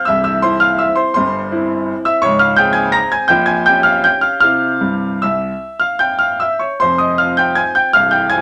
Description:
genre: classical, piano waltz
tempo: 146-178 BPM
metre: 3/4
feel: rubato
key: unclear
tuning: A4 = 440 Hz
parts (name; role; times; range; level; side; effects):
- bright concert grand piano; solo; 0.0-8.4 s; C1 to Bb6; -14 LUFS; equal; none
room: moderate small room reverb, RT60 0.5 s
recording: none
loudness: -14 LUFS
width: mono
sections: 0.0-8.4 A section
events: none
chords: 0.1 C; 2.3 Dbmaj7; 3.3 Gdim/Bb; 4.4 C; 6.8 Fm

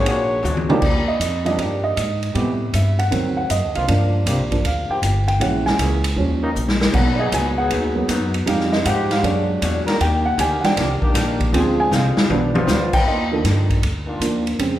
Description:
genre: jazz, big band swing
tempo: 157 BPM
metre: 4/4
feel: swing 66% on 8ths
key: Eb major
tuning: A4 = 440 Hz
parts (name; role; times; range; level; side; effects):
- trumpet with bucket mute; melody; 0.0-0.7 s; C#5; -23 LUFS; left 2 dB; none
- mellow trombone section; sustained chords; 0.0-14.6 s; Eb3 to Bb4; -27 LUFS; equal; none
- upright bass; bass; 0.0-14.8 s; G1 to A2; -22 LUFS; equal; none
- archtop guitar, miked and amplified; accompaniment; 0.1-0.7, 6.9-13.0 s; Ab2 to B4; -26 LUFS; left 2 dB; none
- swinging big-band drum kit; drums; 0.1-14.7 s; crash cymbal, hi-hat, kick drum, ride cymbal, snare drum, toms; -23 LUFS; equal; none
- warm grand piano; accompaniment; 0.7-14.8 s; C3 to Ab5; -21 LUFS; right 2 dB; none
room: wet recital hall reverb, RT60 1.5 s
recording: recorded in a church or concert hall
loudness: -16 LUFS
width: side -13 dB against mid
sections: 0.8-13.1 A section; 13.1-14.8 A section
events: drum fill 0.4-0.8, 6.6-6.9, 11.9-12.7; grand piano solo 0.8-14.8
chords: 0.1 Bb7alt; 0.8 Ebmaj7; 2.4 Am7; 3.1 D7b9; 3.9 Gm7; 5.4 Bbm7b5; 6.2 Eb7; 6.9 Abm7; 8.5 Fm9; 9.2 Bbaug7; 10.0 Ebmaj7; 11.5 Dm7b5; 12.3 G7; 13.1 Ebmaj9

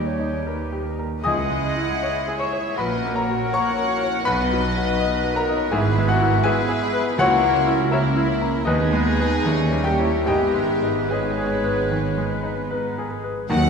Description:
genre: classical, romantic movement for piano and orchestra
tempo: 71-84 BPM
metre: 4/4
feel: rubato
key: G# minor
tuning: A4 = 439 Hz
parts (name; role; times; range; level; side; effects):
- bright grand piano; melody; 0.0-13.7 s; A#1 to D#6; -23 LUFS; left 2 dB; none
- warm symphonic violin section; melody; 0.0-13.7 s; G#4 to F#5; -30 LUFS; left 3 dB; none
- clear clarinet; second line; 0.0-12.7 s; D#4 to D#5; -30 LUFS; left 3 dB; none
- clear oboe; second line; 0.0-13.1 s; G4 to C#5; -33 LUFS; right 1 dB; none
- mellow concert flute; second line; 0.0-13.7 s; G#4 to G#5; -32 LUFS; left 1 dB; none
- warm symphonic violin section; second line; 0.0-13.2 s; G3 to F#4; -32 LUFS; left 2 dB; none
- dark symphonic viola section; accompaniment; 0.0-12.7 s; D#4 to D#5; -30 LUFS; right 2 dB; none
- dark French horn section; sustained chords; 0.0-13.7 s; Gb3 to G#4; -31 LUFS; left 2 dB; none
- dark symphonic cello section; bass; 0.0-13.7 s; C#2 to B2; -28 LUFS; right 4 dB; none
- dark symphonic double bass section; bass; 0.0-13.7 s; G#1 to D#2; -28 LUFS; right 3 dB; none
- warm trombone section; sustained chords; 13.5-13.7 s; Gb3 to Eb4; -30 LUFS; right 1 dB; none
- mellow tuba; bass; 13.5-13.7 s; Eb2; -23 LUFS; right 1 dB; none
room: wet scoring stage reverb, RT60 1.6 s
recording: heard from further back in the room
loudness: -19 LUFS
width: side -6 dB against mid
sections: 0.0-13.5 A section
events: none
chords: 0.0 D#; 1.2 C#m; 2.8 F#/A#; 4.3 B; 5.7 E/G#; 7.2 A#dim/C#; 8.7 G#m/D#; 9.4 D#7b9; 10.3 G#m

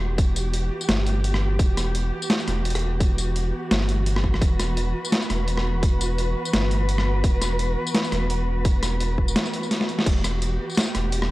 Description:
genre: half-time drum and bass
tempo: 170 BPM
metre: 4/4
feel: swing 56% on 16ths, half-time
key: E minor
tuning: A4 = 440 Hz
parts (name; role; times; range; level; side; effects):
- dark studio cello section; sustained chords; 0.0-11.3 s; E3 to B4; -29 LUFS; right 1 dB; sidechain pumping
- saturated sub bass; bass; 0.0-11.3 s; E1 to G1; -24 LUFS; equal; none
- boom bap sampler-style drum kit; drums; 0.2-11.3 s; crash cymbal, hi-hat, rim click, snare drum, tambourine; -25 LUFS; equal; none
- electronic kick drum; drums; 0.2-10.1 s; none; -21 LUFS; equal; none
room: digital ambience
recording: dry, gritty hardware recording, cassette tape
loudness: -20 LUFS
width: side -18 dB against mid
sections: 0.0-11.3 A section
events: drum fill 9.7-10.1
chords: 0.0 Em

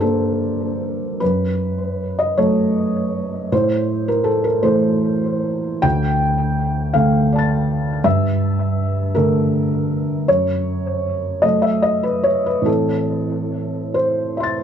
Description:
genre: neoclassical minimalist piano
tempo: 47-55 BPM (dotted quarters)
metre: 6/8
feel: rubato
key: unclear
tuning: A4 = 440 Hz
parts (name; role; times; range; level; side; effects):
- felt-muted upright piano; solo; 0.0-14.6 s; D2 to A6; -16 LUFS; equal; analog delay
room: moderate studio reverb, RT60 0.6 s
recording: dark, warm production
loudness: -16 LUFS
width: side -8 dB against mid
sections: 0.0-14.6 A section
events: none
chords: 0.0 Gmadd9; 1.2 F#m; 3.5 Am; 5.8 Dm; 8.1 Gmadd9; 10.3 F#m; 12.7 Am

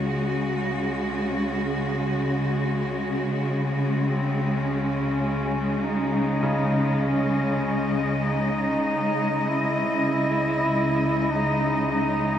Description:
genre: dark ambient drone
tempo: free time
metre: none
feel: none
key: C# minor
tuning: A4 = 440 Hz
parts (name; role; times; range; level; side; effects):
- clear studio cello section; sustained chords; 0.0-12.4 s; C#3 to D#5; -25 LUFS; left 1 dB; shimmer reverb
- organ-like drone; drone; 0.0-12.4 s; C#2 to C#3; -27 LUFS; equal; ensemble chorus, built-in reverb
- warm duduk; melody; 4.0-12.4 s; B#3 to E4; -28 LUFS; right 1 dB; shimmer reverb, tape echo
- bright grand piano; arpeggios; 6.4-12.4 s; C#3; -33 LUFS; equal; none
room: wet huge ambient reverb, RT60 8.2 s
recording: none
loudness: -22 LUFS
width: side -10 dB against mid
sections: 0.0-12.4 A section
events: fade-in on duduk 0.0-12.4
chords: 0.0 C#sus2

